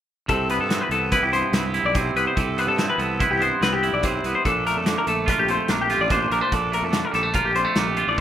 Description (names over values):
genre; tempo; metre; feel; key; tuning
math rock and midwest emo; 144 BPM; 5/4; straight; C major; A4 = 439 Hz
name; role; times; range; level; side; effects
twangy electric guitar; accompaniment; 0.3-8.2 s; F2 to F4; -24 LUFS; right 6 dB; none
twelve-string electric guitar; arpeggios; 0.3-8.2 s; G4 to D5; -23 LUFS; left 5 dB; none
fuzz fingered electric bass; bass; 0.3-8.2 s; A1 to G2; -28 LUFS; equal; overdrive
loose indie drum kit; drums; 0.3-8.2 s; hi-hat, kick drum, snare drum; -27 LUFS; left 1 dB; none
room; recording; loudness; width
light reverb, studio reverb; rough home demo mix; -19 LUFS; side -10 dB against mid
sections
0.3-8.2 A section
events
none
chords
0.3 Cmaj7; 4.4 Bbmaj7